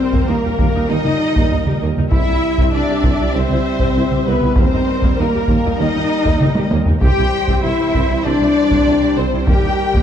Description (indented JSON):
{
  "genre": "cinematic, epic orchestral film score",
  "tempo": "98 BPM",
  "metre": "4/4",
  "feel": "straight",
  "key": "unclear",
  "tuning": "A4 = 440 Hz",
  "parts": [
    { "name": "rich symphonic violin section", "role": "melody", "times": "0.0-10.0 s", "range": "Bb4 to G5", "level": "-26 LUFS", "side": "left 4 dB", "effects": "none" },
    { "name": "dark symphonic violin section", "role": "second line", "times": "0.0-10.0 s", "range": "Bb4 to G5", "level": "-26 LUFS", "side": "left 2 dB", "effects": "none" },
    { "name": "rich symphonic viola section", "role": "accompaniment", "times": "0.0-10.0 s", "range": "Bb3 to E5", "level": "-26 LUFS", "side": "right 1 dB", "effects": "none" },
    { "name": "bright trombone section", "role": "sustained chords", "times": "0.0-10.0 s", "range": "Bb2 to G3", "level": "-26 LUFS", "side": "right 4 dB", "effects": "none" },
    { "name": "warm French horn section", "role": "sustained chords", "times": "0.0-10.0 s", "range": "Bb3 to G4", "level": "-20 LUFS", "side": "left 4 dB", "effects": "none" },
    { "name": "warm symphonic cello section", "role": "bass", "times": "0.0-10.0 s", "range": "Bb3 to G4", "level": "-23 LUFS", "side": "right 1 dB", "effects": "none" },
    { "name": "rich studio double bass section", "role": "bass", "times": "0.1-10.0 s", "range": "C2 to Eb2", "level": "-22 LUFS", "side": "right 3 dB", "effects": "none" },
    { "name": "solo taiko drums", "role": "drums", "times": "0.1-10.0 s", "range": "none", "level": "-18 LUFS", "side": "equal", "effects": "none" },
    { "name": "mellow tuba", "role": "bass", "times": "0.3-9.5 s", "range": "C2 to Eb2", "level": "-25 LUFS", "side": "right 4 dB", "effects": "none" }
  ],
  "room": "moderate scoring stage reverb, RT60 2.0 s",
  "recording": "dark, warm production",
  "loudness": "-13 LUFS",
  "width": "side -9 dB against mid",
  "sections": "0.0-10.0 A section",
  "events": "drum fill 6.4-7.0",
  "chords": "0.0 Eb; 2.1 C; 4.6 Eb; 7.0 C; 9.5 Eb"
}